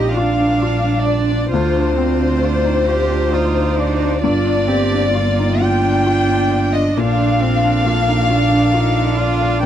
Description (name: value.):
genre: neoclassical piano and strings.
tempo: 44 BPM (dotted quarters).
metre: 6/8.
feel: rubato.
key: G minor.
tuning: A4 = 440 Hz.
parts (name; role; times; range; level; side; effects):
warm chamber violin section; melody; 0.0-9.7 s; C5 to G5; -20 LUFS; left 3 dB; none.
warm cello; second line; 0.0-9.7 s; Bb3 to G4; -22 LUFS; right 9 dB; none.
dark viola; accompaniment; 0.0-9.7 s; D4 to G4; -23 LUFS; right 4 dB; none.
felt-muted upright piano; accompaniment; 0.0-9.7 s; D2 to D5; -22 LUFS; left 5 dB; none.
warm chamber string section; sustained chords; 0.0-9.7 s; G3 to D5; -29 LUFS; right 2 dB; none.
rich double bass; bass; 0.0-9.7 s; G1 to D2; -19 LUFS; equal; none.
room: little or no reverb.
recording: dry, close 1970s-style studio recording.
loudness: -14 LUFS.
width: side -10 dB against mid.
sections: 0.0-9.7 A section.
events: none.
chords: 0.0 Gm7/Bb; 1.5 Dm7; 4.2 Gm7; 7.0 Bbmaj7.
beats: 0.15 | 1.51 2.87 | 4.22 5.61 | 6.96 8.30 | 9.63.